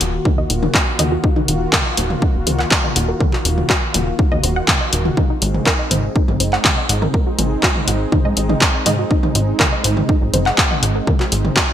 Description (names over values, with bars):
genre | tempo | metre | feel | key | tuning
melodic techno | 122 BPM | 4/4 | straight | unclear | A4 = 442 Hz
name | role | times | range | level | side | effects
lush unison pad | sustained chords | 0.0-11.7 s | Eb3 to Gb4 | -24 LUFS | right 1 dB | chorus, sidechain pumping
wide unison pluck | arpeggios | 0.0-11.6 s | Eb4 to Gb5 | -24 LUFS | equal | sidechain pumping, ping-pong delay
plucky analog bass | bass | 0.0-11.5 s | Eb1 to Ab2 | -20 LUFS | equal | sidechain pumping
punchy analog drum machine | drums | 0.0-11.7 s | handclaps, hi-hat, toms | -18 LUFS | equal | sidechain pumping on toms, sidechain pumping on hats, gated reverb
electronic kick drum | drums | 0.3-11.7 s | none | -18 LUFS | equal | none
room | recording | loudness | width
light reverb | bright 1980s-style digital production | -14 LUFS | side -10 dB against mid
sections
0.0-11.7 A section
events
none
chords
0.0 Ebm; 5.2 Ab